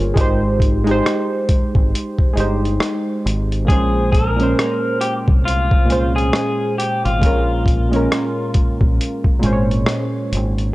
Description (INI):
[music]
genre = lo-fi hip hop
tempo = 68 BPM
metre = 4/4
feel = swing 60% on 16ths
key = Bb dorian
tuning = A4 = 439 Hz
[part]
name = warm analog keys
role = accompaniment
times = 0.0-10.7 s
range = Bb2 to Db5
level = -20 LUFS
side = right 1 dB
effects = chorus, low-pass filter
[part]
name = deep dub fingered electric bass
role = bass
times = 0.0-10.7 s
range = G1 to C2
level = -19 LUFS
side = equal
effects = none
[part]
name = boom bap sampler-style drum kit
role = drums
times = 0.2-10.7 s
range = hi-hat, kick drum, rim click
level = -17 LUFS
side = equal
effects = none
[part]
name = electric guitar through a small old amp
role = melody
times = 3.7-9.8 s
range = F4 to Bb4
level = -22 LUFS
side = left 1 dB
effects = spring reverb, low-pass filter, tape echo
[sound]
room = little or no reverb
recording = dry, gritty hardware recording, cassette tape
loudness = -15 LUFS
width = side -18 dB against mid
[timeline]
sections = 0.0-10.7 A section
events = none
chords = 0.2 Abmaj7; 3.7 Bbm9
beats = | 0.16 1.04 1.92 2.81 | 3.69 4.57 5.45 6.33 | 7.22 8.10 8.98 9.86